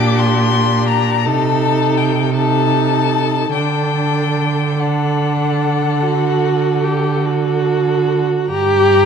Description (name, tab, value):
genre	classical, slow romantic movement for string quartet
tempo	48-58 BPM (dotted quarters)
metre	12/8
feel	rubato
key	unclear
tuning	A4 = 440 Hz
part	rich violin	melody	0.0-9.1 s	F#5 to D6	-21 LUFS	left 11 dB	none
part	rich violin	second line	0.0-9.1 s	G4 to Bb5	-22 LUFS	left 5 dB	none
part	clear viola	accompaniment	0.0-9.1 s	D4 to G4	-18 LUFS	right 1 dB	none
part	clear cello	bass	0.0-9.1 s	G2 to D3	-17 LUFS	right 4 dB	none
room	moderate scoring stage reverb, RT60 1.5 s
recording	dark, warm production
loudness	-14 LUFS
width	side -6 dB against mid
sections	0.0-8.5 A section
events	none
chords	0.0 Gm/Bb; 1.3 Adim/C; 3.5 D; 8.5 Gm